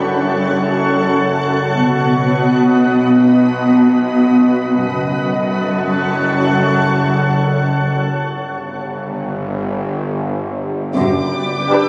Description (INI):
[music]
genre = cinematic, suspense film score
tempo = free time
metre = none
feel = none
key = F# phrygian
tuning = A4 = 445 Hz
[part]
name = shimmering ambient pad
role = sustained chords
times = 0.0-11.9 s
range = A4 to G5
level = -22 LUFS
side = equal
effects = chorus, built-in reverb
[part]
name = muted symphonic cello section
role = bass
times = 0.0-11.6 s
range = F#2 to B2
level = -17 LUFS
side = equal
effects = none
[part]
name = bowed-like drone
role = drone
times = 0.0-11.9 s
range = F#1 to B1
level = -23 LUFS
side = equal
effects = built-in reverb
[part]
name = muted symphonic double bass section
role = bass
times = 1.9-5.6, 11.0-11.6 s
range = F#1 to B1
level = -29 LUFS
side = equal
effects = none
[part]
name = muted symphonic violin section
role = texture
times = 11.0-11.9 s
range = D6 to E6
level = -25 LUFS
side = equal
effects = none
[part]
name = muted symphonic violin section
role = melody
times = 11.7-11.9 s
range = B4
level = -21 LUFS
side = equal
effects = none
[part]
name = muted symphonic viola section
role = accompaniment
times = 11.7-11.9 s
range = D4 to G4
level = -16 LUFS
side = equal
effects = none
[sound]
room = moderate recital hall reverb, RT60 1.4 s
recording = recorded on a phone in the room, studio ambience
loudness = -16 LUFS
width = mono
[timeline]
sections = 0.0-11.0 A section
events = break 7.9-11.0; band accent 11.0-11.7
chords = 0.0 F#m; 1.9 B; 4.9 F#m; 7.9 N.C.; 11.0 G/F#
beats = free time